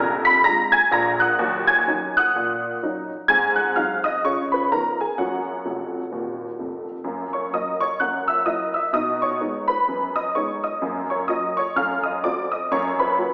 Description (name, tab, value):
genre	jazz, stride piano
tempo	127 BPM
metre	4/4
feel	swing 60% on 8ths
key	F# major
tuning	A4 = 440 Hz
part	honky-tonk upright piano	solo	0.0-13.3 s	D#1 to B6	-22 LUFS	equal	none
room	wet recital hall reverb, RT60 1.6 s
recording	recorded in a church or concert hall, AM radio sound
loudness	-22 LUFS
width	mono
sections	0.0-7.1 A section; 7.1-13.3 A section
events	honky-tonk piano fill 5.6-7.1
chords	0.0 A#7; 1.4 D#m7; 3.3 G#7; 4.2 C#13; 5.2 F#; 8.0 F#7; 8.9 B6; 10.8 F#; 11.8 F#dim7; 12.7 F#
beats	0.46 0.93 | 1.40 1.87 2.34 2.81 | 3.29 3.76 4.23 4.70 | 5.17 5.64 6.11 6.58 | 7.06 7.53 8.00 8.47 | 8.94 9.41 9.88 10.35 | 10.83 11.30 11.77 12.24 | 12.71 13.18